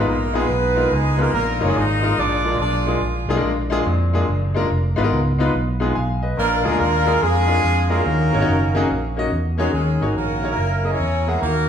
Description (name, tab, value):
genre	uptempo gospel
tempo	143 BPM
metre	4/4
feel	swing 66% on 8ths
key	Eb minor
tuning	A4 = 440 Hz
part	warm horn section	melody	0.0-3.4, 6.4-11.7 s	Ab3 to Eb5	-21 LUFS	right 1 dB	none
part	bright grand piano	accompaniment	0.0-11.7 s	Bb2 to Ab5	-22 LUFS	left 2 dB	none
part	fingered electric bass	bass	0.0-11.7 s	F1 to F2	-21 LUFS	right 1 dB	none
room	wet large studio reverb, RT60 1.3 s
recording	band playing live in one room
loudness	-17 LUFS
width	side -8 dB against mid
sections	0.0-9.7 A section; 9.7-11.7 B section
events	none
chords	0.0 Fm7b5; 1.3 Bb7sus4; 2.2 Bb7; 4.7 Fm7b5; 6.4 Bb7; 8.1 Ebm7; 10.6 Gb13